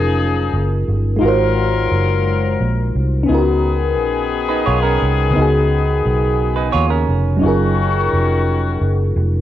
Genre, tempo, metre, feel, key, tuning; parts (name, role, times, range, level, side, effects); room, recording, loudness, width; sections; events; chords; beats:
R&B; 58 BPM (dotted quarters); 6/8; straight; F# major; A4 = 445 Hz
mellow FM electric piano; accompaniment; 0.0-9.4 s; C#3 to B#4; -19 LUFS; left 1 dB; chorus, phaser, cassette tape
clear horn section; stabs; 0.0-9.1 s; D#3 to A#4; -22 LUFS; left 7 dB; cassette tape
vintage muted fingered electric bass; bass; 0.0-9.4 s; E#1 to D#2; -18 LUFS; equal; transformer saturation
semi-hollow electric guitar; second line; 4.5-7.9 s; C#4 to C#5; -21 LUFS; right 9 dB; cassette tape
digital ambience; home recording on cassette; -14 LUFS; side -12 dB against mid
0.0-9.4 A section
0.0 F#maj13; 1.2 G#13; 3.3 C#13sus4; 7.4 F#maj13
0.18 | 1.21 2.25 | 3.28 4.32 | 5.35 6.38 | 7.42 8.45